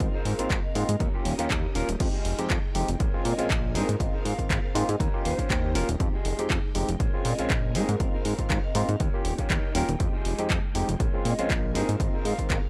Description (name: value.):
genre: filtered disco house.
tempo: 120 BPM.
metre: 4/4.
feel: swing 54% on 16ths.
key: F minor.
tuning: A4 = 441 Hz.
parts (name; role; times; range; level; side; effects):
hollow concert flute; melody; 0.0-12.4 s; C5 to F5; -40 LUFS; equal; sidechain pumping, tape echo.
overdriven tine electric piano; accompaniment; 0.0-12.6 s; Ab3 to Bb4; -34 LUFS; equal; phaser, sidechain pumping.
phased string machine; sustained chords; 0.0-12.7 s; Ab3 to Ab5; -44 LUFS; equal; none.
mellow electric guitar; riff; 0.0-12.6 s; Eb4 to G5; -40 LUFS; equal; spring reverb, sidechain pumping.
fat analog bass; bass; 0.0-12.6 s; Eb1 to Bb2; -31 LUFS; equal; transformer saturation, sidechain pumping.
electronic kick drum; drums; 0.0-12.6 s; none; -31 LUFS; equal; none.
punchy analog drum machine; drums; 0.0-12.6 s; crash cymbal, handclaps, hi-hat; -35 LUFS; equal; sidechain pumping on hats, sidechain pumping on cymbals.
room: digital ambience.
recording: dry, gritty hardware recording.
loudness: -27 LUFS.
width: mono.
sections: 0.0-2.0 A section; 2.0-12.7 A section.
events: drop 0.0-2.0, 2.0-12.7; clean electric guitar fill 4.5-6.0, 9.3-10.0.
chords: 0.0 Ab69; 1.0 Eb7; 2.0 Fm9; 3.0 Bbm7; 3.8 Ab69; 5.0 Eb7; 6.0 Fm9; 7.0 Bbm7; 7.8 Ab69; 9.0 Eb7; 10.0 Fm9; 11.0 Bbm7; 11.8 Ab69.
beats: | 0.00 0.50 1.00 1.50 | 2.00 2.50 3.00 3.50 | 4.00 4.50 5.00 5.50 | 6.00 6.50 7.00 7.50 | 8.00 8.50 9.00 9.50 | 10.00 10.50 11.00 11.50 | 12.00 12.50.